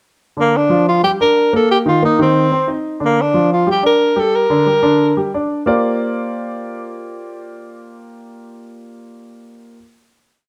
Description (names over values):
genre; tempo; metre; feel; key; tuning
jazz; 182 BPM; 4/4; straight; Bb major; A4 = 440 Hz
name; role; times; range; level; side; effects
breathy tenor saxophone; melody; 0.4-5.3 s; Bb3 to Bb4; -16 LUFS; equal; plate reverb
warm concert grand piano; accompaniment; 0.4-9.8 s; D3 to Eb5; -20 LUFS; equal; none
room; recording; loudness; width
moderate studio reverb, RT60 0.5 s; none; -15 LUFS; mono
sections
0.4-5.7 A section; 5.7-8.3 final chord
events
none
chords
0.4 Dm; 1.0 Gm; 1.7 Ebsus2; 2.4 Cm/Eb; 3.0 Bb6; 5.7 Bb69